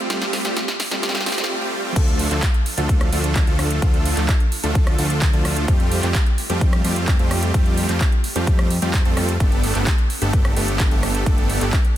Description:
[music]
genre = EDM, festival progressive house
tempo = 129 BPM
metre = 4/4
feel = straight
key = unclear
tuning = A4 = 440 Hz
[part]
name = supersaw chords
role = riff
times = 0.0-11.8 s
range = F3 to A4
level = -23 LUFS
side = right 1 dB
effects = sidechain pumping, ping-pong delay
[part]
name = big-room dance drum kit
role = drums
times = 0.1-11.9 s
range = crash cymbal, handclaps, hi-hat, rim click, snare drum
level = -26 LUFS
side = right 1 dB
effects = high-pass filter on hats, high-pass filter on snare, high-pass filter on cymbals
[part]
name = fat analog bass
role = bass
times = 2.0-11.7 s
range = G1 to F2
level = -22 LUFS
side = equal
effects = sidechain pumping
[part]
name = electronic kick drum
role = drums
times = 2.0-11.8 s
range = none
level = -18 LUFS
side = equal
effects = none
[sound]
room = little or no reverb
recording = dense, heavily limited modern master, high-pass filter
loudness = -17 LUFS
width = side -12 dB against mid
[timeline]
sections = 0.0-2.0 A section; 2.0-12.0 B section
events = build-up 0.0-2.0; drum fill 0.0-1.5; break 1.5-2.0; drop 2.0-12.0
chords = 0.0 Fadd9; 2.0 Dm; 5.7 Fadd9; 9.4 Gadd9

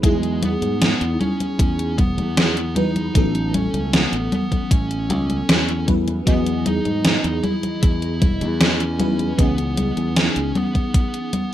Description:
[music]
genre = vaporwave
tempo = 77 BPM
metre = 4/4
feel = straight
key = E major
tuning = A4 = 440 Hz
[part]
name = fuzz lead guitar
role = melody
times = 0.0-11.5 s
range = G#3 to E4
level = -26 LUFS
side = equal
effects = distortion, tape echo
[part]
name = FM electric piano with soft pad layer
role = accompaniment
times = 0.0-11.5 s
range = E3 to D#5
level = -26 LUFS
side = equal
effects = ensemble chorus
[part]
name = modern bright fingered electric bass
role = bass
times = 0.0-10.5 s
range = E1 to G#2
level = -24 LUFS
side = equal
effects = none
[part]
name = electronic kick drum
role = drums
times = 0.0-11.1 s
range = none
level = -18 LUFS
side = equal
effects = overdrive
[part]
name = gated 80s digital drum machine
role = drums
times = 0.0-11.5 s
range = congas, hi-hat, snare drum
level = -21 LUFS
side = equal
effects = gated reverb, gated reverb snare, overdrive
[sound]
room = little or no reverb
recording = rough home demo mix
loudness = -17 LUFS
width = side -12 dB against mid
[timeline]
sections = 0.0-11.5 A section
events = none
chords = 0.0 Emaj7; 3.2 A69; 6.3 Emaj7; 9.4 C#m9

